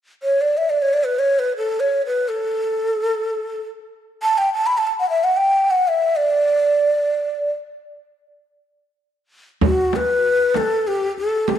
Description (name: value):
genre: Arabic maqam ensemble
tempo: free time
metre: none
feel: none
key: D maqam ajam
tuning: A4 = 440 Hz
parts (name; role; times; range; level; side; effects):
- breathy mellow ney; melody; 0.2-11.6 s; F#4 to B5; -17 LUFS; equal; none
- darbuka; percussion; 9.6-11.6 s; none; -24 LUFS; left 4 dB; none
- frame drum; percussion; 9.6-11.6 s; none; -23 LUFS; right 9 dB; none
room: wet echo chamber reverb, RT60 1.8 s, small room ambience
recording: 1960s-style stereo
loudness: -17 LUFS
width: side -10 dB against mid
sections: 0.0-9.6 A section; 9.6-11.6 B section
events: none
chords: none